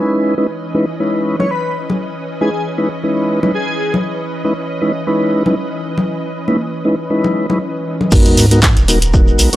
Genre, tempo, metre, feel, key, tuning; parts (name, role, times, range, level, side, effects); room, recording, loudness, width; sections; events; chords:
deep house; 118 BPM; 4/4; swing 55% on 16ths; A4 = 442 Hz
soft string machine; sustained chords; 0.0-9.6 s; E3 to D#5; -23 LUFS; equal; ensemble chorus, sidechain pumping
mellow tonewheel organ; stabs; 0.0-9.6 s; G#3 to B4; -16 LUFS; equal; slow rotary speaker, sidechain pumping, low-pass filter, analog delay
airy dreamy lead; melody; 1.4-3.9, 9.5-9.6 s; G#4 to C#5; -21 LUFS; left 1 dB; chorus, analog delay
congas; percussion; 1.4-8.1 s; -19 LUFS; left 1 dB
round analog bass; bass; 8.1-9.5 s; D#1 to G#2; -14 LUFS; equal; sidechain pumping
electronic kick drum; drums; 8.1-9.2 s; -12 LUFS; equal; studio reverb
punchy analog drum machine; drums; 8.1-9.6 s; crash cymbal, handclaps, hi-hat; -17 LUFS; equal; studio reverb
shekere; percussion; 8.1-9.6 s; -21 LUFS; equal
sub drop; sound effects; 8.1-9.6 s; -20 LUFS; right 1 dB
light reverb; dry, gritty hardware recording; -13 LUFS; side -14 dB against mid
0.0-8.1 A section; 8.1-9.6 B section
drop 8.1-9.6; impact 8.1-9.6
0.0 C#m9; 8.1 G#m9